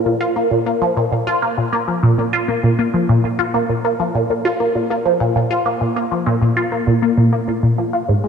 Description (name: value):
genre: ambient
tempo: 99 BPM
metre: 4/4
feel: straight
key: unclear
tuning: A4 = 440 Hz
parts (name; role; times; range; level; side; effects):
- resonant blip pluck; solo; 0.1-8.3 s; Ab2 to F4; -15 LUFS; equal; phaser, lush chorus, ping-pong delay
room: wet plate reverb, RT60 3.2 s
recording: dark, warm production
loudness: -15 LUFS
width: side -6 dB against mid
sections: 0.0-8.3 A section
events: none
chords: none